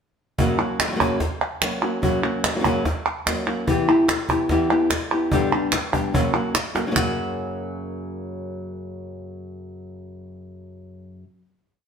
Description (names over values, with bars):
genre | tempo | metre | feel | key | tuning
flamenco | 146 BPM | 4/4 | straight | F# phrygian dominant | A4 = 440 Hz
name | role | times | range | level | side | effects
flamenco guitar | accompaniment | 0.4-11.2 s | F#2 to G4 | -23 LUFS | left 1 dB | none
cajon | percussion | 0.4-7.1 s | none | -26 LUFS | equal | none
palmas hand claps | percussion | 0.6-7.1 s | none | -24 LUFS | right 3 dB | none
room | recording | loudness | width
wet stone room reverb, RT60 1.0 s | band playing live in one room | -20 LUFS | side -7 dB against mid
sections
0.4-7.0 groove; 7.0-10.3 final chord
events
drum fill 6.8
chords
0.4 F#; 3.7 Em; 5.3 G; 6.1 F#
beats
| 0.39 0.80 1.21 1.62 | 2.04 2.45 2.86 3.27 | 3.68 4.09 4.50 4.91 | 5.32 5.73 6.14 6.55 | 6.96 7.37 7.78 8.20 | 8.61 9.02 9.43 9.85